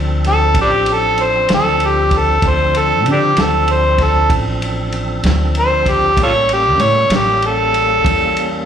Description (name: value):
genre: slow blues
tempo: 64 BPM (dotted quarters)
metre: 12/8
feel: straight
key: D minor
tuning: A4 = 440 Hz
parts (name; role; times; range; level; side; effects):
- tonewheel organ; sustained chords; 0.0-8.7 s; F3 to A4; -23 LUFS; right 1 dB; overdrive, fast rotary speaker
- upright bass; bass; 0.0-8.7 s; A1 to D3; -18 LUFS; equal; none
- vintage drum kit; drums; 0.2-8.5 s; kick drum, ride cymbal, snare drum; -21 LUFS; equal; slapback echo
- overdriven harmonica; melody; 0.3-8.7 s; D4 to C#5; -14 LUFS; equal; slapback echo
room: small room ambience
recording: live gig heard through the venue's PA, club ambience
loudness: -12 LUFS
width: side -8 dB against mid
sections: 0.0-8.7 A section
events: harmonica solo 0.0-8.7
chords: 0.0 Dm7; 6.2 A7b9